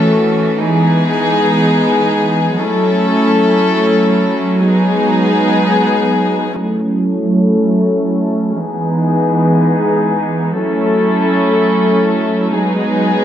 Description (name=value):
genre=hip hop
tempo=free time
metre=none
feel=none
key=A lydian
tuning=A4 = 440 Hz
part: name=warm chamber string section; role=solo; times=0.0-13.2 s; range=E3 to A4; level=-11 LUFS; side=equal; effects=low-pass filter, tape echo
room=moderate spring reverb, RT60 1.8 s, studio reverb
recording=echo-heavy mix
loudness=-11 LUFS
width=side -10 dB against mid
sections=0.0-6.6 A section; 6.6-13.2 B section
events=filter sweep on string section 6.6-13.2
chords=0.0 A6; 0.6 Emaj7; 2.6 F#m7; 4.6 G#m7; 6.6 A6; 8.6 Emaj7; 10.5 F#m7; 12.5 G#m7